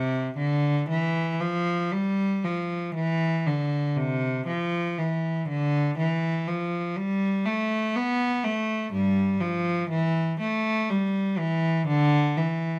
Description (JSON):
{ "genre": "classical, baroque-style suite movement for unaccompanied cello", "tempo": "60 BPM", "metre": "3/4", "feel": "rubato", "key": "unclear", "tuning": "A4 = 438 Hz", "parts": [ { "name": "rich cello", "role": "solo", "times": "0.0-12.8 s", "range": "G2 to B3", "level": "-26 LUFS", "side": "equal", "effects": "none" } ], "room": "moderate studio reverb, RT60 0.8 s", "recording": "none", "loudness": "-26 LUFS", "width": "mono", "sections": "0.0-12.8 A section", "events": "none", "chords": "none", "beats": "0.88 1.91 | 2.95 3.96 4.97 | 5.97 6.95 7.94 | 8.91 9.90 10.89 | 11.88" }